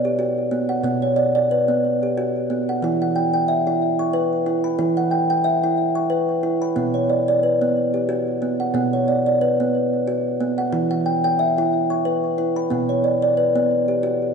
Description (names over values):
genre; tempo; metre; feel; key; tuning
world meditative, meditative tuned percussion; 91 BPM; 3/4; swing 55% on 16ths; B minor; A4 = 441 Hz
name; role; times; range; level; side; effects
kalimba; solo; 0.0-14.3 s; B2 to C#6; -18 LUFS; equal; ping-pong delay
room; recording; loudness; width
wet concert hall reverb, RT60 2.3 s; dark, warm production, nothing above 10.4 kHz; -18 LUFS; side -6 dB against mid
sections
0.0-14.3 A section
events
none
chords
0.0 Bm; 2.8 Em; 6.8 Bm; 10.7 Em; 12.7 Bm